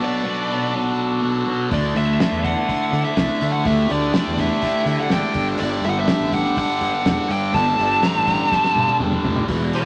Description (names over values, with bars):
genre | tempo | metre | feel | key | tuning
psychedelic rock | 124 BPM | 4/4 | straight | unclear | A4 = 439 Hz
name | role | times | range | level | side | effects
fuzz lead guitar | melody | 0.0-9.9 s | A4 to A5 | -24 LUFS | equal | distortion
hand-pumped harmonium | sustained chords | 0.0-9.4 s | D4 to A4 | -29 LUFS | equal | none
thick fuzz guitar | riff | 0.0-9.9 s | E2 to D4 | -25 LUFS | equal | distortion, phaser
fuzz fingered electric bass | bass | 1.7-9.7 s | E1 to D3 | -26 LUFS | equal | overdrive
cloth-damped thuddy drum kit | drums | 1.7-9.8 s | hi-hat, kick drum, snare drum, toms | -26 LUFS | equal | none
room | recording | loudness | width
wet studio reverb, RT60 0.7 s | none | -20 LUFS | mono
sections
0.0-9.5 A section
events
drum fill 8.5-9.5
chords
0.0 Bm; 1.7 Dsus2; 5.4 Gsus2